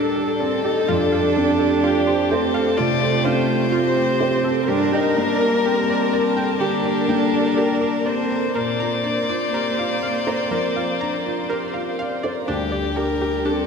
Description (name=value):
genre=neoclassical piano and strings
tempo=62 BPM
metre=4/4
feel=rubato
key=Bb major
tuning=A4 = 440 Hz
part: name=rich violin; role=melody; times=0.0-13.7 s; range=G4 to D5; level=-24 LUFS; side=left 4 dB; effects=none
part: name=dark cello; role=second line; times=0.0-13.7 s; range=A3 to Eb4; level=-23 LUFS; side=right 3 dB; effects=none
part: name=felt-muted upright piano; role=accompaniment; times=0.0-13.7 s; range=D2 to D5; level=-25 LUFS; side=left 1 dB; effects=none
part: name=warm viola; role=accompaniment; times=0.0-13.5 s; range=F4 to C5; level=-28 LUFS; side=right 1 dB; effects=none
part: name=rich symphonic string section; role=sustained chords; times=0.0-13.7 s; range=G3 to A5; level=-29 LUFS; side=left 2 dB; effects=none
part: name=analog pluck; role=arpeggios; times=0.0-13.6 s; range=D4 to Bb5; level=-27 LUFS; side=right 1 dB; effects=chorus
room=wet church reverb, RT60 3.9 s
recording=recorded in a church or concert hall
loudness=-18 LUFS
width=side -6 dB against mid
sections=0.0-13.7 A section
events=none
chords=0.0 Dsus4; 0.9 Fadd9; 4.7 Gmadd9; 8.6 Bbadd9; 12.5 Dsus4